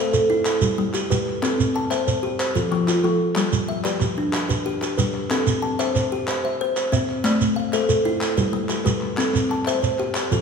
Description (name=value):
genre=southern african traditional, mbira-style interlocking cycle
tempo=124 BPM (dotted quarters)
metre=12/8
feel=straight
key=unclear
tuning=A4 = 440 Hz
part: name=kalimba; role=arpeggios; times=0.0-10.4 s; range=F3 to A5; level=-23 LUFS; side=left 4 dB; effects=none
part: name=kalimba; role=arpeggios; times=0.0-10.4 s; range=F3 to G5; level=-25 LUFS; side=right 3 dB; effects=none
part: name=group handclap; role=percussion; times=0.1-10.3 s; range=none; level=-31 LUFS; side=left 2 dB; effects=none
part: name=shekere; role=percussion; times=0.1-10.4 s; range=none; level=-26 LUFS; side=right 4 dB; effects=none
room=wet recital hall reverb, RT60 1.5 s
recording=recorded in a church or concert hall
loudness=-19 LUFS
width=side -6 dB against mid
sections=0.0-10.4 A section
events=none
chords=0.5 G; 1.4 C; 2.4 F; 3.4 G; 5.3 C; 7.2 Am; 8.2 G; 9.2 C